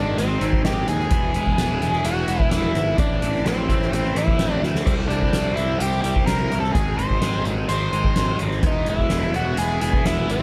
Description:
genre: psychedelic rock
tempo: 128 BPM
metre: 4/4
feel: straight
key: unclear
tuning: A4 = 440 Hz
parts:
  - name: octave-fuzz lead guitar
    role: melody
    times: 0.0-10.4 s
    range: C4 to C5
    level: -27 LUFS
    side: equal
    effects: distortion, analog delay
  - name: overdriven electric guitar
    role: riff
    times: 0.0-10.4 s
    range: Ab2 to E4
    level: -29 LUFS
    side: equal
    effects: phaser
  - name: fuzz picked electric bass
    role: bass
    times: 0.0-10.4 s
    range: E1 to Eb2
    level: -27 LUFS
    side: equal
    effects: overdrive
  - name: soft-mallet drum kit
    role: drums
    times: 0.2-10.4 s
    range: crash cymbal, hi-hat, kick drum, snare drum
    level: -26 LUFS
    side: equal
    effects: none
room: studio ambience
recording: none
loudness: -21 LUFS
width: mono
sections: 0.0-10.4 A section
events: drum fill 4.6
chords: 0.0 Ab; 1.1 E; 3.0 Am; 4.9 C; 6.7 Ab; 8.6 E

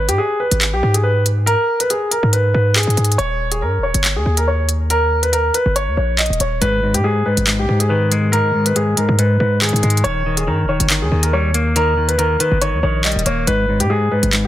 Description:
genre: hip hop, drill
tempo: 140 BPM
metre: 4/4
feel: half-time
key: G# harmonic minor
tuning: A4 = 440 Hz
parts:
  - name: warm concert grand piano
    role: melody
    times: 0.0-14.5 s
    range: G4 to D#5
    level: -18 LUFS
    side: equal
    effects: digital delay
  - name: hard-hitting 808-style bass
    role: bass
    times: 0.0-14.5 s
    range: D#1 to G#2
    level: -18 LUFS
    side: equal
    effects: none
  - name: drill drum kit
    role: drums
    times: 0.1-14.4 s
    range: handclaps, hi-hat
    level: -18 LUFS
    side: equal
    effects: none
  - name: semi-hollow electric guitar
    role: accompaniment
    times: 6.6-14.5 s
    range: G#2 to A#3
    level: -19 LUFS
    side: left 2 dB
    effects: none
room: light reverb, digital ambience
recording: dense, heavily limited modern master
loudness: -14 LUFS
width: side -13 dB against mid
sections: 0.0-14.5 A section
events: none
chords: 0.0 G#m; 3.2 D#; 6.6 G#m; 10.0 D#; 13.5 G#m

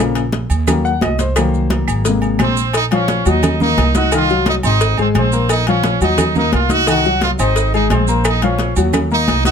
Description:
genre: latin, salsa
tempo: 174 BPM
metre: 4/4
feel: straight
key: Bb minor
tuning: A4 = 444 Hz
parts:
  - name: clear baby grand piano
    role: accompaniment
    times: 0.0-9.5 s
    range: C3 to Eb6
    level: -18 LUFS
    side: left 5 dB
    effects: none
  - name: upright bass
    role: bass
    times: 0.0-9.5 s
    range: Ab1 to Eb2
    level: -18 LUFS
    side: right 2 dB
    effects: none
  - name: agogo bells and timbales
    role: percussion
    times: 0.2-9.5 s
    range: none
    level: -26 LUFS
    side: left 1 dB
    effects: none
  - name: congas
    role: percussion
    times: 0.2-9.5 s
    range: none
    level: -21 LUFS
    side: equal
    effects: none
  - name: cowbell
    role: percussion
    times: 0.2-9.5 s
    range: none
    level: -23 LUFS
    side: left 2 dB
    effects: none
  - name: maracas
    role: percussion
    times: 0.2-9.5 s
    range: none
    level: -29 LUFS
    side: right 10 dB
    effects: none
  - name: claves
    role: percussion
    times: 0.7-2.6, 8.2-9.1 s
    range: none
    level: -28 LUFS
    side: right 13 dB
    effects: none
  - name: clear trumpet section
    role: melody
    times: 2.4-9.5 s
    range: C4 to Gb5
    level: -18 LUFS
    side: right 2 dB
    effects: none
room: light reverb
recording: close, detailed microphones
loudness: -13 LUFS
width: side -7 dB against mid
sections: 0.0-2.7 A section; 2.7-9.5 B section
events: grand piano solo 0.0-2.7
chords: 0.0 Bbm; 0.7 Ebm; 1.4 Cm7b5; 2.0 Abadd9; 2.7 Bbm; 3.4 Ebm; 4.1 Cdim; 4.8 Abadd9; 5.5 Bbm; 6.2 Ebm; 6.9 Cdim; 7.6 Abadd9; 8.2 Bbm; 8.9 Ebm

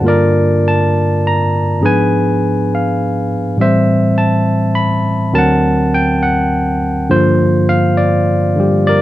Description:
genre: jazz ballad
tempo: 68 BPM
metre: 4/4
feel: swing 68% on 8ths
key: G minor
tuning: A4 = 440 Hz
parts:
  - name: barky tine electric piano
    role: solo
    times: 0.0-9.0 s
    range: D2 to B5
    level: -11 LUFS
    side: equal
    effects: overdrive
room: moderate booth ambience, RT60 0.2 s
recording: dry, close 1970s-style studio recording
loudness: -11 LUFS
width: side -15 dB against mid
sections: 0.0-9.0 A section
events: none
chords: 0.0 Gm7; 1.8 G#dim7; 3.6 Am7; 5.3 D7b13; 7.1 Gm7

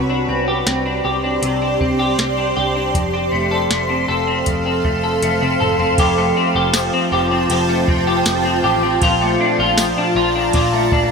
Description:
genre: dream pop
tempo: 79 BPM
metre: 4/4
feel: straight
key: unclear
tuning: A4 = 440 Hz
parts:
  - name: granular cloud pad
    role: sustained chords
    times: 0.0-11.1 s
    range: F4 to C6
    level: -19 LUFS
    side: right 1 dB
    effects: built-in reverb
  - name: semi-hollow electric guitar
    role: arpeggios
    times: 0.0-11.1 s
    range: F2 to A4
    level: -18 LUFS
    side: left 2 dB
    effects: analog chorus, digital delay
  - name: vintage muted picked electric bass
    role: bass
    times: 0.0-11.1 s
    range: F1 to C2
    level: -25 LUFS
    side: right 1 dB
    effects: none
  - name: soft vintage rhythm box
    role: drums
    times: 0.7-11.1 s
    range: hi-hat, kick drum, ride cymbal, snare drum, tambourine, toms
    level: -21 LUFS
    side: right 1 dB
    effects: none
room: moderate plate reverb, RT60 2.8 s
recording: none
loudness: -14 LUFS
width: side -5 dB against mid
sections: 0.0-6.0 A section; 6.0-11.1 B section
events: drum fill 5.2-6.0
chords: 0.0 Csus2; 2.9 F; 6.0 Fadd9; 9.0 Bbmaj7

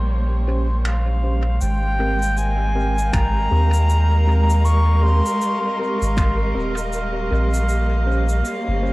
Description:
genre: ambient dub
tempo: 79 BPM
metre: 4/4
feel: swing 59% on 16ths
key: unclear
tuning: A4 = 440 Hz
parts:
  - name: warm chamber string section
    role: sustained chords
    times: 0.0-8.9 s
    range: G3 to Eb5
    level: -28 LUFS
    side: equal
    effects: cassette tape
  - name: soft dub sub bass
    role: bass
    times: 0.0-8.9 s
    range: Eb1 to Eb2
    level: -18 LUFS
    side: equal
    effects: none
  - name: mellow tine electric piano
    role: stabs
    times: 0.5-8.9 s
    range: C4 to C5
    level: -30 LUFS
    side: right 1 dB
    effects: medium stereo tremolo, low-pass filter, cassette tape, dub echo
  - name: finger snaps and shaker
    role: drums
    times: 0.8-8.6 s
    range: none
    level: -36 LUFS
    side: equal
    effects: cassette tape, dub echo
  - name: bright reedy wooden flute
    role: melody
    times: 0.9-5.8 s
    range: F5 to Db6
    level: -25 LUFS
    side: equal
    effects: dub echo
  - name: drifting glass-harmonics texture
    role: texture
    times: 2.4-8.9 s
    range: F5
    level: -30 LUFS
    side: right 1 dB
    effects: chorus, built-in reverb, cassette tape
  - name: electronic kick drum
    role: drums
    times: 3.1-6.4 s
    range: none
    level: -21 LUFS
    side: equal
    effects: cassette tape
room: light reverb, studio reverb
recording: home recording on cassette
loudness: -17 LUFS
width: side -20 dB against mid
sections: 0.0-1.6 A section; 1.6-8.9 B section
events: none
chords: 0.0 Bbm69; 1.6 Abmaj9; 7.7 Bbm69

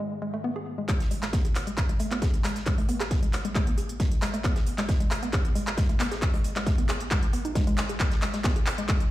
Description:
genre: driving peak-time techno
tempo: 135 BPM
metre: 4/4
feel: straight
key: G# phrygian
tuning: A4 = 440 Hz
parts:
  - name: woody wave-folded pluck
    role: riff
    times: 0.0-8.9 s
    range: G#3 to G#4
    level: -32 LUFS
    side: equal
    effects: chorus, tube saturation, sidechain pumping, tape echo
  - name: analog drone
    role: drone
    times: 0.0-0.9 s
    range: G#2 to D#3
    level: -43 LUFS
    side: equal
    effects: chorus, sidechain pumping
  - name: electronic kick drum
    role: drums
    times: 0.9-9.0 s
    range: none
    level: -25 LUFS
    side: equal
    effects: none
  - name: modern studio drum kit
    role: drums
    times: 0.9-9.0 s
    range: hi-hat, snare drum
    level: -44 LUFS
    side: right 2 dB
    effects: sidechain pumping on hats, high-pass filter on hats, high-pass filter on snare, high-pass filter on room
  - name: techno drum kit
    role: drums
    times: 0.9-9.1 s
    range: handclaps, hi-hat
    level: -32 LUFS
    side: equal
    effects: none
room: light reverb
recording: played on a big sound system in a bare room, large studio reverb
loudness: -24 LUFS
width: side -15 dB against mid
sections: 0.9-9.1 A section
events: build-up 0.9-9.1; drum fill 0.9-9.1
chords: 0.0 G#5

